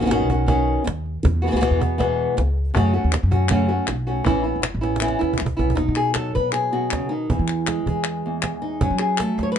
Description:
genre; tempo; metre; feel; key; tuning
flamenco; 159 BPM; 4/4; straight; E major; A4 = 439 Hz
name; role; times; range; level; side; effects
flamenco guitar; melody; 0.0-9.6 s; E2 to C#5; -22 LUFS; left 1 dB; plate reverb
upright bass; bass; 0.0-9.6 s; F#1 to F#3; -23 LUFS; equal; none
cajon; percussion; 0.1-9.6 s; none; -25 LUFS; right 3 dB; none
palmas hand claps; percussion; 2.7-9.6 s; none; -26 LUFS; left 6 dB; none
room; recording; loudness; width
light reverb; dark, warm production, nothing above 10.8 kHz; -19 LUFS; side -8 dB against mid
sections
0.0-5.8 A section; 5.8-9.6 B section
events
drum fill 4.8-5.8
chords
0.0 Badd9; 1.2 Eadd9; 2.8 F#m; 4.3 Aadd9; 5.8 B; 7.3 E; 8.8 F#m

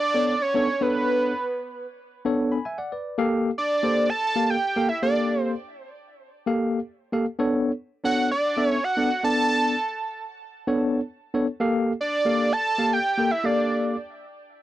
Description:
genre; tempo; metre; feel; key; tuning
funk; 114 BPM; 4/4; straight; unclear; A4 = 441 Hz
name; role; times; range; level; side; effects
fat analog lead; melody; 0.0-14.0 s; B4 to A5; -24 LUFS; right 2 dB; tape echo
tine electric piano; accompaniment; 0.1-14.0 s; Bb3 to B5; -23 LUFS; left 1 dB; medium stereo tremolo
room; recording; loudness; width
little or no reverb; dry, close 1970s-style studio recording; -22 LUFS; side -14 dB against mid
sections
0.0-14.6 A section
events
none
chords
0.0 Bm9; 3.0 Gm9; 7.2 Bm9; 11.5 Gm9

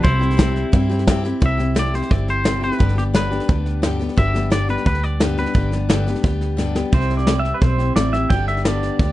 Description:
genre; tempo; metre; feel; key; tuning
honky-tonk and classic country; 174 BPM; 4/4; straight; C major; A4 = 441 Hz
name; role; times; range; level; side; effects
twangy electric guitar; melody; 0.0-6.5 s; E4 to E5; -25 LUFS; left 1 dB; warbly pitch drift
picked steel-string acoustic guitar; accompaniment; 0.0-9.1 s; G2 to G4; -23 LUFS; left 2 dB; none
vintage muted fingered electric bass; bass; 0.0-9.1 s; G1 to G2; -21 LUFS; equal; none
soft brush drum kit; drums; 0.0-9.1 s; hi-hat, kick drum, snare drum; -19 LUFS; equal; none
pedal steel guitar; second line; 6.9-9.1 s; B4 to G5; -23 LUFS; right 3 dB; none
room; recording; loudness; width
light reverb; dark, warm production, nothing above 10.8 kHz; -16 LUFS; side -15 dB against mid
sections
0.0-1.4 A section; 1.4-6.9 B section; 6.9-9.1 C section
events
drum fill 6.6-6.9; pedal steel guitar solo 6.9-9.1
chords
0.0 C; 2.8 G; 6.9 C; 8.3 G

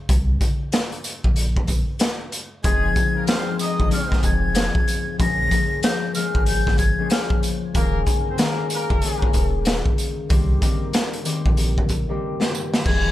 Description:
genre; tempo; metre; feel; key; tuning
hip hop, boom-bap hip-hop; 94 BPM; 4/4; swing 60% on 16ths; unclear; A4 = 441 Hz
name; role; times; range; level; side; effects
warm sub bass; bass; 0.1-13.1 s; Eb1 to C2; -23 LUFS; equal; none
raw garage drum kit; drums; 0.1-13.0 s; crash cymbal, hi-hat, kick drum, snare drum; -21 LUFS; equal; none
tambourine; percussion; 0.4-12.7 s; none; -35 LUFS; right 8 dB; none
breathy jazz flute; melody; 2.6-7.4, 12.9-13.1 s; Eb6 to Bb6; -25 LUFS; equal; digital delay
concert harp; accompaniment; 2.6-13.1 s; Eb3 to Ab4; -25 LUFS; left 4 dB; cassette tape
warm horn section; stabs; 2.6-9.3 s; Ab3 to Eb5; -31 LUFS; right 2 dB; digital delay
room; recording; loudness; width
little or no reverb; lossy compression artefacts; -18 LUFS; side -14 dB against mid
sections
0.0-12.9 A section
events
break 0.0-2.6; drum fill 12.2-12.9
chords
0.1 Bbsus2; 2.6 Fm7; 5.2 Bbm7; 7.8 Eb7sus4; 10.3 Cm7

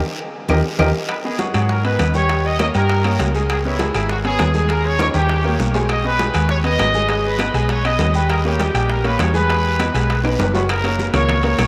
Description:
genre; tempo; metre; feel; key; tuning
latin, salsa; 200 BPM; 4/4; straight; G# minor; A4 = 440 Hz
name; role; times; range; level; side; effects
bright upright piano; accompaniment; 0.5-11.7 s; F#3 to G#5; -24 LUFS; equal; none
hollow-body short-scale fingered electric bass; bass; 0.5-11.7 s; F#1 to G#2; -22 LUFS; equal; none
bongos; percussion; 0.5-11.7 s; none; -32 LUFS; equal; none
claves; percussion; 0.5-11.7 s; none; -36 LUFS; equal; none
congas; percussion; 0.5-11.7 s; none; -30 LUFS; equal; none
guiro; percussion; 0.5-11.7 s; none; -37 LUFS; equal; none
timbales; percussion; 0.5-11.7 s; none; -29 LUFS; equal; none
bright trumpet section; melody; 1.1-11.7 s; E4 to D#5; -24 LUFS; equal; none
room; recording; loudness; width
wet huge ambient reverb, RT60 7.9 s; in a vast, echoing space; -18 LUFS; mono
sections
0.0-1.1 A section; 1.1-10.7 B section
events
band accent 0.0-1.1; upright piano solo 0.0-1.1; drum fill 0.3-1.1, 5.0-5.9, 10.2-10.7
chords
0.0 D#; 1.1 G#m7; 2.3 D#7; 3.5 C#m7; 4.7 D#7sus4; 5.3 D#7; 5.9 B6; 7.1 G#m; 8.3 D#7; 9.5 Emaj7; 10.7 F#

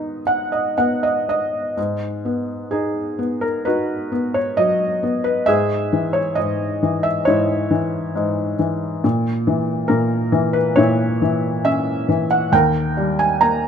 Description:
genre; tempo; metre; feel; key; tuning
classical, lyrical solo piano; 57-71 BPM; 4/4; rubato; G# minor; A4 = 437 Hz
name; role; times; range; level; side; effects
felt-muted upright piano; solo; 0.0-13.7 s; D#2 to A#5; -17 LUFS; equal; none
room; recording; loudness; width
light reverb; close, detailed microphones; -17 LUFS; side -7 dB against mid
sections
0.0-1.8 A section; 1.8-13.7 B section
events
felt piano fill 0.0-1.8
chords
0.0 G#m7; 5.5 C#m/G#; 9.0 A#dim; 12.5 D#

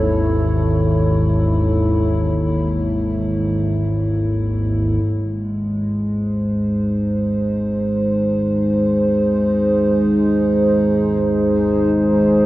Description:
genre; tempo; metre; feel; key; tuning
dark ambient drone; free time; none; none; Ab double harmonic; A4 = 440 Hz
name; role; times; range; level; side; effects
dark analog pad; sustained chords; 0.0-12.5 s; Ab2 to C#5; -17 LUFS; equal; chorus
bronze singing bowl; arpeggios; 0.0-1.9 s; Ab2; -29 LUFS; equal; none
analog drone; drone; 0.0-12.5 s; Ab1 to Eb2; -23 LUFS; equal; chorus
room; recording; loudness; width
wet cathedral reverb, RT60 5.2 s; worn, warbling old tape, cassette tape, warbly pitch drift; -16 LUFS; side -16 dB against mid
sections
0.0-5.0 A section; 5.0-12.5 B section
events
filter sweep on synth drone 0.0-5.0; fade-in on synth drone 5.0-12.5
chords
0.0 A/Ab; 5.0 Ab

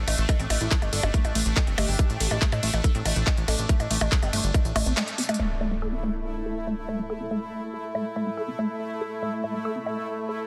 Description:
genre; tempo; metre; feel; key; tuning
psychedelic trance; 141 BPM; 4/4; straight; unclear; A4 = 440 Hz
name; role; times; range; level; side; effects
bubbling stepped-filter texture; sustained chords; 0.0-10.5 s; A3 to E4; -36 LUFS; equal; chorus, built-in reverb, sidechain pumping
plucky analog bass; bass; 0.0-4.9 s; G1 to A2; -29 LUFS; equal; tube saturation
woody wave-folded pluck; riff; 0.1-10.4 s; A3 to A4; -34 LUFS; equal; chorus, sidechain pumping, digital delay
techno drum kit; drums; 0.1-5.4 s; handclaps, hi-hat, percussion blips, ride cymbal; -30 LUFS; equal; none
electronic kick drum; drums; 0.3-4.6 s; none; -25 LUFS; equal; none
formant-sweep wobble bass; second line; 0.6-2.4 s; D4 to G4; -40 LUFS; equal; lush chorus, sidechain pumping, high-pass filter, tape echo
impact; sound effects; 5.4-7.1 s; none; -35 LUFS; equal; none
deep dark ambient pad; texture; 7.1-10.5 s; A3 to E6; -40 LUFS; equal; chorus, built-in reverb, sidechain pumping
room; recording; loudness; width
light reverb; dense, heavily limited modern master; -26 LUFS; mono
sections
0.0-5.4 A section; 5.4-10.5 B section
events
drop 0.0-5.4; band accent 5.0; drum fill 5.2; impact 5.4-7.1; filter sweep on synth arpeggio sound 5.4-10.5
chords
0.0 A5

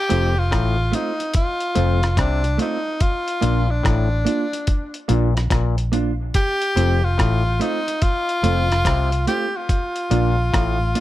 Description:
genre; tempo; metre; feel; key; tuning
roots reggae; 72 BPM; 4/4; swing 65% on 16ths; F mixolydian; A4 = 441 Hz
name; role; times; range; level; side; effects
breathy tenor saxophone; melody; 0.0-11.0 s; D4 to G4; -23 LUFS; left 1 dB; dub echo
mellow electric guitar; accompaniment; 0.1-11.0 s; A3 to F4; -25 LUFS; right 5 dB; wide subtle chorus, dub echo
auto-wah clav; riff; 0.1-10.8 s; F2 to C3; -25 LUFS; left 5 dB; overdrive
vintage muted fingered electric bass; bass; 0.1-10.9 s; F1 to C2; -20 LUFS; equal; none
dusty soul sampler-style drum kit; drums; 0.1-11.0 s; hi-hat, kick drum, rim click; -22 LUFS; equal; none
room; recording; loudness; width
light reverb; none; -18 LUFS; side -15 dB against mid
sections
0.0-11.0 A section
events
none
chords
0.0 F; 3.0 Bb; 6.3 F; 9.7 Bb

